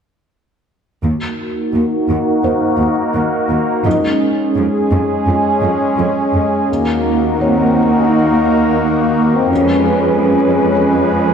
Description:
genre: cinematic.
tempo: 85 BPM.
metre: 4/4.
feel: straight.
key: Eb dorian.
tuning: A4 = 440 Hz.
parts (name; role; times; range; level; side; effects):
sweeping resonant pad; sustained chords; 1.0-11.3 s; Ab3 to Cb5; -15 LUFS; right 1 dB; lush chorus, low-pass filter.
rich symphonic cello section; bass; 1.0-11.3 s; Eb2 to F2; -18 LUFS; right 2 dB; none.
felt-muted upright piano; texture; 2.4-9.5 s; Eb4 to Eb5; -24 LUFS; left 1 dB; tape echo.
mellow French horn section; sustained chords; 6.0-11.2 s; Ab3 to Eb4; -17 LUFS; left 4 dB; low-pass filter.
room: moderate scoring stage reverb, RT60 1.5 s.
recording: none.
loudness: -12 LUFS.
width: side -7 dB against mid.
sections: 1.0-6.7 A section; 6.7-11.3 B section.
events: filter sweep 1.0-6.7.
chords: 1.0 Ebm; 3.9 Db/F; 6.7 Ebm; 9.5 Db7/F.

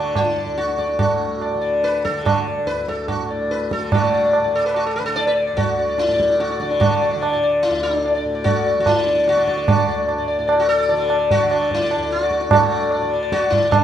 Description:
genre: indian classical, Hindustani.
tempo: 146 BPM.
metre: 7/4.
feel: straight.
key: D raga bhupali.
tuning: A4 = 441 Hz.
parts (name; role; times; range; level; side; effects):
sitar; melody; 0.0-13.8 s; D4 to D5; -18 LUFS; left 2 dB; none.
tanpura; drone; 0.0-13.8 s; D2 to D3; -28 LUFS; left 1 dB; none.
tabla; percussion; 0.2-13.8 s; none; -21 LUFS; right 4 dB; none.
room: moderate recital hall reverb, RT60 1.6 s.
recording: minimal, uncompressed stereo recording.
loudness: -16 LUFS.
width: side -10 dB against mid.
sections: 0.0-3.9 A section; 3.9-13.8 B section.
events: speeding up 0.0-13.8.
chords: none.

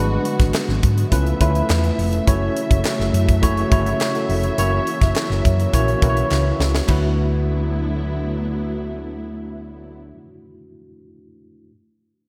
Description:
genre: polished 1980s jazz-funk pop.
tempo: 104 BPM.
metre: 4/4.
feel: straight.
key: D major.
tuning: A4 = 440 Hz.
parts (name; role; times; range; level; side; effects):
tine electric piano; accompaniment; 0.0-11.7 s; G#3 to F#5; -26 LUFS; equal; overdrive, subtle chorus.
dark studio string section; sustained chords; 0.0-10.0 s; C#3 to E5; -29 LUFS; equal; none.
hollow-body short-scale fingered electric bass; bass; 0.0-10.1 s; E#1 to G#2; -23 LUFS; equal; none.
crisp fusion drum kit; drums; 0.3-7.0 s; crash cymbal, hi-hat, kick drum, snare drum; -23 LUFS; equal; none.
group handclap; percussion; 0.5-7.2 s; none; -37 LUFS; equal; none.
room: moderate lush hall reverb, RT60 1.8 s, studio reverb.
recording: dreamy mix soaked in reverb.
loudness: -19 LUFS.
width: mono.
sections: 0.0-6.9 A section; 6.9-9.2 B section.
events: drum fill 6.3-6.9.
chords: 0.0 G#m7b5; 1.1 C#7alt; 2.3 F#m7; 4.6 F#7; 6.9 D69.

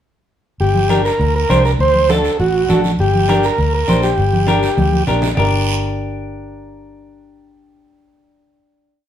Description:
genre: latin, cumbia.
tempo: 202 BPM.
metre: 4/4.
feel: straight.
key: G harmonic minor.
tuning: A4 = 440 Hz.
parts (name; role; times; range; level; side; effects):
overdriven combo organ; melody; 0.6-5.0 s; F#4 to C5; -16 LUFS; right 1 dB; none.
vintage muted fingered electric bass; bass; 0.6-9.1 s; G1 to D2; -18 LUFS; equal; none.
congas; percussion; 0.6-5.4 s; none; -21 LUFS; right 1 dB; none.
guiro; percussion; 0.6-5.4 s; none; -28 LUFS; right 5 dB; none.
semi-hollow electric guitar; accompaniment; 0.9-9.1 s; D4 to C5; -20 LUFS; left 2 dB; none.
room: wet studio reverb, RT60 0.7 s.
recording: heard from further back in the room.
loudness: -13 LUFS.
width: side -10 dB against mid.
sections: 0.6-5.4 A section; 5.4-7.7 final chord.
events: drum fill 4.8-5.4.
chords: 0.6 Gm; 1.8 D7; 3.0 Gm.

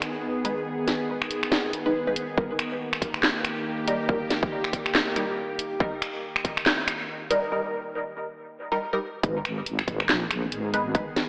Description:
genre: deep dubstep.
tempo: 140 BPM.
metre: 4/4.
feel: swing 58% on 16ths, half-time.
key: G# harmonic minor.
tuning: A4 = 440 Hz.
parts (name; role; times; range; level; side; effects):
bowed-like drone; sustained chords; 0.0-11.3 s; D#3 to G#4; -34 LUFS; equal; built-in reverb.
garage drum kit; drums; 0.0-11.3 s; finger snaps, handclaps, hi-hat, snare drum; -29 LUFS; equal; none.
filtered dub chord stab; stabs; 0.4-11.0 s; G3 to B4; -32 LUFS; equal; phaser, subtle chorus, dub echo.
electronic kick drum; drums; 2.4-6.5, 9.2-11.0 s; none; -30 LUFS; equal; overdrive.
deep soft wobble bass; bass; 9.2-10.9 s; G#1 to A#1; -33 LUFS; equal; chorus.
room: wet lush hall reverb, RT60 2.0 s, digital ambience.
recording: AM radio sound.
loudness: -27 LUFS.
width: mono.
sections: 0.0-9.2 A section; 9.2-11.3 B section.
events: build-up 0.0-9.2; break 7.5-9.2; drop 9.2-11.3.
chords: 0.0 G#m; 2.4 D#; 9.2 G#m.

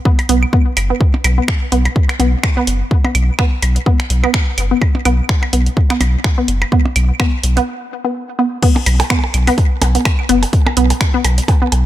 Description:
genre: minimal techno.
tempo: 126 BPM.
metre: 4/4.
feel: swing 56% on 16ths.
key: unclear.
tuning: A4 = 442 Hz.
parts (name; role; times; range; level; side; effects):
resonant blip pluck; riff; 0.1-11.7 s; B3; -19 LUFS; equal; chorus, sidechain pumping, ping-pong delay.
electronic kick drum; drums; 0.1-11.6 s; none; -14 LUFS; equal; overdrive.
booming analog drum machine; drums; 0.2-11.8 s; crash cymbal, finger snaps, hi-hat; -22 LUFS; equal; none.
percussion blips and claves; percussion; 0.2-11.8 s; none; -22 LUFS; right 3 dB; digital delay.
saturated sub bass; bass; 0.3-11.9 s; F#1 to B1; -14 LUFS; equal; sidechain pumping.
room: digital ambience.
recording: none.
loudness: -12 LUFS.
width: side -13 dB against mid.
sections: 0.0-8.6 A section; 8.6-11.9 B section.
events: break 7.7-8.6; drop 8.6-11.9.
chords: 0.0 B5.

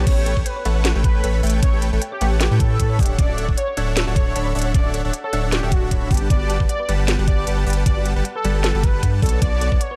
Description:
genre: future bass.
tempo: 154 BPM.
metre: 4/4.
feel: swing 54% on 16ths, half-time.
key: unclear.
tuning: A4 = 440 Hz.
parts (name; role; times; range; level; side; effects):
warm velvety synth lead; melody; 0.0-10.0 s; F#4 to D5; -30 LUFS; equal; chorus, sidechain pumping, tape echo.
thumb-piano-like synth pluck; arpeggios; 0.0-9.9 s; B3 to G5; -35 LUFS; equal; chorus, sidechain pumping, dub echo.
dense compressed supersaw; riff; 0.0-9.8 s; G3 to B5; -29 LUFS; equal; sidechain pumping.
saturated sub bass; bass; 0.0-9.8 s; D1 to A2; -23 LUFS; equal; sidechain pumping.
electronic kick drum; drums; 0.1-9.8 s; none; -21 LUFS; equal; none.
trap drum kit; drums; 0.1-9.9 s; crash cymbal, hi-hat, snare drum; -28 LUFS; equal; none.
room: little or no reverb.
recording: dark, warm production.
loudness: -19 LUFS.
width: mono.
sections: 0.1-10.0 A section.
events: drop 0.1-10.0.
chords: 0.1 A7; 3.0 Dmaj7; 6.1 Gmaj7; 9.2 Bm7.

